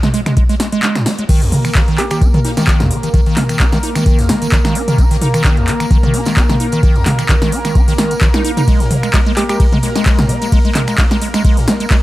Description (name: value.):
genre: acid house.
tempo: 130 BPM.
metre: 4/4.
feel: swing 54% on 16ths.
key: unclear.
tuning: A4 = 444 Hz.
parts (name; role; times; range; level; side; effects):
acid bass, square; riff; 0.0-12.0 s; Eb2 to Eb4; -18 LUFS; right 1 dB; tube saturation, wide subtle chorus.
electro analog drum machine; drums; 0.0-12.0 s; crash cymbal, finger snaps, handclaps, hi-hat, ride cymbal, snare drum, toms; -17 LUFS; equal; overdrive.
soft-mallet drum kit; drums; 0.1-12.0 s; hi-hat, snare drum; -33 LUFS; left 1 dB; none.
electronic kick drum; drums; 0.4-12.0 s; none; -13 LUFS; equal; overdrive.
lush unison pad; sustained chords; 1.3-12.0 s; Bb3 to Bb4; -22 LUFS; left 1 dB; chorus, sidechain pumping.
tambourine; percussion; 1.3-12.0 s; none; -33 LUFS; right 2 dB; none.
hollow square pluck; melody; 2.0-2.2, 9.4-9.6 s; G4; -23 LUFS; right 1 dB; chorus, tape echo.
room: studio reverb.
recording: dry, gritty hardware recording.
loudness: -11 LUFS.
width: side -16 dB against mid.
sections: 0.0-1.3 A section; 1.3-12.0 B section.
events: filter sweep on acid bass 0.0-1.3; kick drops out 0.8-1.3; drop 1.3-12.0.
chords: 0.0 N.C.; 1.3 Eb5; 8.7 Absus2.